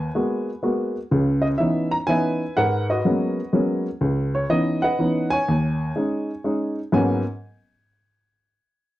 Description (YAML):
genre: jazz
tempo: 124 BPM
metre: 3/4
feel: swing 67% on 8ths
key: G# minor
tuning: A4 = 440 Hz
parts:
  - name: warm baby grand piano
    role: solo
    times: 0.0-7.2 s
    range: C#2 to A#5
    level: -20 LUFS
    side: equal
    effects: slapback echo
room: little or no reverb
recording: dry, close 1970s-style studio recording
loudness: -20 LUFS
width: side -15 dB against mid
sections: 0.0-1.1 A section; 1.1-6.9 B section; 6.9-8.4 C section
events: none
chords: 0.0 G#m9; 1.1 C#m9; 2.6 G#m11; 4.0 C#m9; 5.5 D#7sus4; 6.9 G#m11